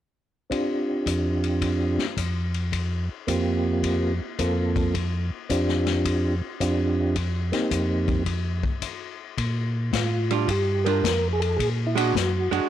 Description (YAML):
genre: soul jazz organ trio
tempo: 108 BPM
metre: 4/4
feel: swing 67% on 8ths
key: Bb major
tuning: A4 = 440 Hz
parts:
  - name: percussive tonewheel organ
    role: melody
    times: 0.5-12.7 s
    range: Bb3 to Bb4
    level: -25 LUFS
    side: right 1 dB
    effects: slow rotary speaker, chorus vibrato, slapback echo
  - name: vintage drum kit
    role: drums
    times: 0.5-12.6 s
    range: hi-hat, kick drum, ride cymbal, snare drum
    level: -30 LUFS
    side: left 6 dB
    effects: none
  - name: mellow tonewheel organ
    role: bass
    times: 1.1-12.6 s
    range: F2 to Bb2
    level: -26 LUFS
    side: equal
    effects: slow rotary speaker, transformer saturation
  - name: archtop guitar, miked and amplified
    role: accompaniment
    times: 10.3-12.7 s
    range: G3 to F#4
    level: -26 LUFS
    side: right 12 dB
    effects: none
room: small room reverb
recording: 1960s-style stereo with parts hard left and right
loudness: -22 LUFS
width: side -11 dB against mid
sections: 0.5-9.4 A section; 9.4-12.7 B section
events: break 8.3-9.4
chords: 0.5 G7sus4/F; 9.4 Bb6; 11.6 Bbaug7